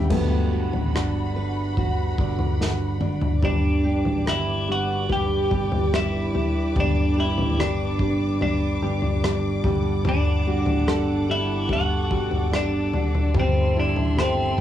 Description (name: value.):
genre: pop ballad.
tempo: 73 BPM.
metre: 4/4.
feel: straight.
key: G major.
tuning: A4 = 440 Hz.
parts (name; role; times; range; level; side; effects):
dark baby grand piano; accompaniment; 0.0-14.6 s; D3 to G5; -29 LUFS; left 4 dB; cassette tape, plate reverb.
dark studio string section; sustained chords; 0.0-14.6 s; F#4 to D6; -36 LUFS; left 2 dB; cassette tape, plate reverb.
fingerpicked steel-string acoustic guitar; arpeggios; 0.0-14.6 s; G3 to B4; -31 LUFS; right 5 dB; cassette tape, plate reverb, analog delay.
fingered electric bass; bass; 0.1-14.6 s; G1 to A1; -27 LUFS; equal; none.
unplugged drum kit; drums; 0.1-14.6 s; crash cymbal, kick drum, rim click, snare drum, toms; -24 LUFS; equal; cassette tape.
twelve-string electric guitar; melody; 3.4-14.6 s; C4 to G4; -25 LUFS; equal; plate reverb, analog delay.
room: light reverb.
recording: home recording on cassette, studio reverb.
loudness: -20 LUFS.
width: side -11 dB against mid.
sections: 0.1-3.4 A section; 3.4-14.6 B section.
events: drum fill 2.6-3.4.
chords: 0.1 Gmaj7; 13.3 Am/G.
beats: | 0.10 0.94 1.77 2.59 | 3.43 4.27 5.10 5.93 | 6.76 7.59 8.41 9.23 | 10.06 10.88 11.70 12.52 | 13.35 14.17.